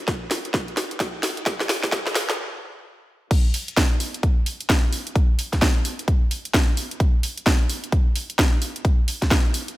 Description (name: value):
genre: house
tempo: 130 BPM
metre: 4/4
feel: swing 61% on 16ths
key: none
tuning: none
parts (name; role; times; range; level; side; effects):
- electronic kick drum; drums; 0.1-9.4 s; none; -20 LUFS; equal; studio reverb
- garage drum kit; drums; 0.1-9.8 s; crash cymbal, hi-hat, snare drum; -24 LUFS; equal; studio reverb
room: light reverb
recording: high-pass filter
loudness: -20 LUFS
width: side -17 dB against mid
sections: 0.0-3.3 A section; 3.3-9.8 B section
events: build-up 0.0-3.3; drum fill 0.0-2.4; stop 2.4-3.3; drop 3.3-9.8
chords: none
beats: 0.08 0.54 1.00 | 1.46 1.93 2.39 2.85 | 3.31 3.77 4.23 4.69 | 5.16 5.62 6.08 6.54 | 7.00 7.46 7.92 8.39 | 8.85 9.31